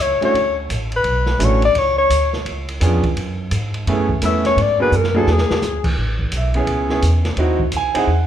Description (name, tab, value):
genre	jazz, small-group swing and bop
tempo	171 BPM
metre	4/4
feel	swing 64% on 8ths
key	F# minor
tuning	A4 = 438 Hz
part	mellow alto saxophone	melody	0.0-5.9 s	G#4 to E5	-18 LUFS	left 3 dB	none
part	upright bass	bass	0.0-8.3 s	A1 to G#2	-20 LUFS	right 1 dB	none
part	clear grand piano	accompaniment	0.2-8.3 s	F#3 to G#5	-21 LUFS	right 3 dB	none
part	open jazz drum kit	drums	0.2-8.2 s	crash cymbal, hi-hat, kick drum, ride cymbal, snare drum, toms	-25 LUFS	right 1 dB	none
room	moderate recital hall reverb, RT60 1.6 s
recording	recorded in a church or concert hall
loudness	-15 LUFS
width	side -10 dB against mid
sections	0.0-6.0 A section; 6.0-8.3 A section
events	alto saxophone solo 0.0-6.0; drum fill 4.9-5.6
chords	0.3 Dmaj9; 1.8 C#7b9; 3.2 F#m11; 4.6 G#m7b5; 5.3 E7; 6.0 Amaj7; 7.4 G#7b13